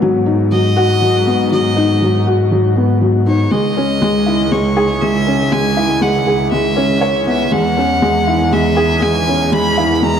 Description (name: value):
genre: piano and strings electronica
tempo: 120 BPM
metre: 4/4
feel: straight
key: G# minor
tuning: A4 = 438 Hz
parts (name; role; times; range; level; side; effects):
- felt-muted upright piano; riff; 0.0-10.2 s; F#3 to C#5; -14 LUFS; left 1 dB; tape echo
- warm studio cello section; bass; 0.0-10.2 s; C#2 to G#2; -17 LUFS; right 1 dB; none
- clear violin; melody; 0.5-10.2 s; C#5 to B5; -19 LUFS; equal; tape echo
room: moderate scoring stage reverb, RT60 1.9 s, studio reverb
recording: dark, warm production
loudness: -12 LUFS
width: side -8 dB against mid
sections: 0.0-10.2 A section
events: none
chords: 0.0 G#m7; 3.5 C#m; 7.5 E6